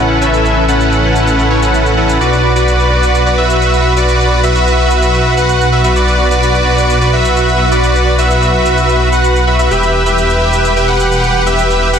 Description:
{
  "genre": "EDM, festival progressive house",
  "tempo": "128 BPM",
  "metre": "4/4",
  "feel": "straight",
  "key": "B minor",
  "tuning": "A4 = 439 Hz",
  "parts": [
    { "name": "dense compressed supersaw", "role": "riff", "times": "0.0-12.0 s", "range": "C#4 to F#5", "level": "-11 LUFS", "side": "equal", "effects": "low-pass filter, tape echo" },
    { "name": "wide detuned saw bass", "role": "bass", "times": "0.0-12.0 s", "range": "E1 to B1", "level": "-14 LUFS", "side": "equal", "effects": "chorus" },
    { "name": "shaker", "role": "drums", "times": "0.2-12.0 s", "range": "none", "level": "-30 LUFS", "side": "right 1 dB", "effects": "low-pass filter on perc, studio reverb" }
  ],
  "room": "moderate lush hall reverb, RT60 2.0 s",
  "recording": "dense, heavily limited modern master",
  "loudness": "-9 LUFS",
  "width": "side -7 dB against mid",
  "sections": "0.0-12.0 A section",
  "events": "none",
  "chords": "0.0 Aadd9; 2.2 Bm; 9.7 Em"
}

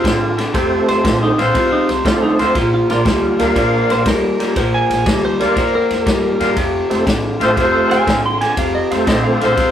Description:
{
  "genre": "electric blues shuffle",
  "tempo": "120 BPM",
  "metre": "4/4",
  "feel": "swing 68% on 8ths",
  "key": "F major",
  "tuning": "A4 = 437 Hz",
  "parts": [
    { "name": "clean lap steel guitar", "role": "second line", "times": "0.0-9.5 s", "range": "Eb4 to C6", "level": "-19 LUFS", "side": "right 2 dB", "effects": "none" },
    { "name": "electric guitar through a small old amp", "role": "riff", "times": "0.0-9.7 s", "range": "F2 to G3", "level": "-18 LUFS", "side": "left 2 dB", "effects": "none" },
    { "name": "clear saxophone section", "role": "stabs", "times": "0.0-9.7 s", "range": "F4 to D5", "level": "-18 LUFS", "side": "left 2 dB", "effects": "none" },
    { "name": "upright bass", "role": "bass", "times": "0.0-9.7 s", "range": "F1 to G2", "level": "-25 LUFS", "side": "right 1 dB", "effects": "none" },
    { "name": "vintage drum kit", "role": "drums", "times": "0.0-9.7 s", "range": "kick drum, ride cymbal, snare drum", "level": "-20 LUFS", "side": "equal", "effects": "none" },
    { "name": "bright tonewheel organ", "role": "accompaniment", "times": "0.5-9.5 s", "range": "A3 to F5", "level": "-18 LUFS", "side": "right 2 dB", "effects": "slow rotary speaker, chorus vibrato" }
  ],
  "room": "moderate studio reverb, RT60 0.5 s",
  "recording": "rough rehearsal-room recording, warm saturation",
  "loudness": "-13 LUFS",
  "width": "side -10 dB against mid",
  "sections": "0.0-9.7 A section",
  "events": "electric slide guitar solo 0.0-9.7",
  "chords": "0.0 F; 2.6 Bb; 6.6 F"
}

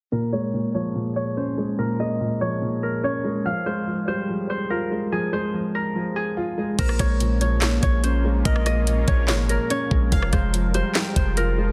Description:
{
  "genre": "hip hop, trap",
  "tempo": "144 BPM",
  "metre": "4/4",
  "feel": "half-time",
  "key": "Bb dorian",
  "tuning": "A4 = 441 Hz",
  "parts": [
    { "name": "Celtic harp", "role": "melody", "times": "0.1-11.7 s", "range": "Ab4 to F5", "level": "-30 LUFS", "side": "equal", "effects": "low-pass filter, tape echo" },
    { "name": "dark concert grand piano", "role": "accompaniment", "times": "0.1-11.7 s", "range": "Bb2 to F4", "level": "-28 LUFS", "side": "equal", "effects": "low-pass filter" },
    { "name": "glassy wavetable pluck", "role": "second line", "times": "6.8-11.7 s", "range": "C5 to G5", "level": "-39 LUFS", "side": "equal", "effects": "none" },
    { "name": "sweeping resonant pad", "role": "sustained chords", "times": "6.8-11.7 s", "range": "F3 to Bb4", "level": "-37 LUFS", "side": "equal", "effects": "chorus" },
    { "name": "warm 808-style bass", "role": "bass", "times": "6.8-11.7 s", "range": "F1 to Bb1", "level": "-24 LUFS", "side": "equal", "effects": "none" },
    { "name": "trap drum kit", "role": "drums", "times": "6.8-11.5 s", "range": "crash cymbal, handclaps, hi-hat, kick drum, rim click, snare drum", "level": "-25 LUFS", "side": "equal", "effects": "soft clipping on snare" }
  ],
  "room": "light reverb, digital ambience",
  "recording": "dense, heavily limited modern master",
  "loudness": "-23 LUFS",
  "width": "mono",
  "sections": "0.1-6.8 A section; 6.8-11.7 B section",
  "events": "filter sweep 0.1-6.8",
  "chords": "0.1 Bbm7; 3.5 Fmadd9; 6.8 Bbm7; 10.1 Fmadd9"
}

